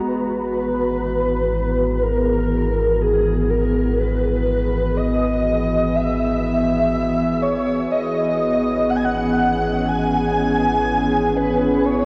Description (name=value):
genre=ambient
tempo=61 BPM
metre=4/4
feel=straight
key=unclear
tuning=A4 = 443 Hz
part: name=warbly tape-like pad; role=sustained chords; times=0.0-12.1 s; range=E3 to A#5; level=-23 LUFS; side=equal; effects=chorus, built-in reverb, phaser
part: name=breathy flute-like synth lead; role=melody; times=0.1-12.1 s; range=G#4 to G#5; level=-23 LUFS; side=equal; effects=ensemble chorus, tape echo
part: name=warm sub bass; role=bass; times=0.1-12.1 s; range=G#1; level=-28 LUFS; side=equal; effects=tube saturation
room=wet huge ambient reverb, RT60 7.1 s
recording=worn, warbling old tape, cassette tape, warbly pitch drift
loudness=-19 LUFS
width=mono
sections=0.1-12.1 A section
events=fade-out on sub bass 0.1-12.1; filter sweep on ambient pad 0.1-12.1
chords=0.1 Eadd9/G#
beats=| 0.05 1.03 2.02 3.00 | 3.98 4.97 5.95 6.93 | 7.92 8.90 9.89 10.87 | 11.85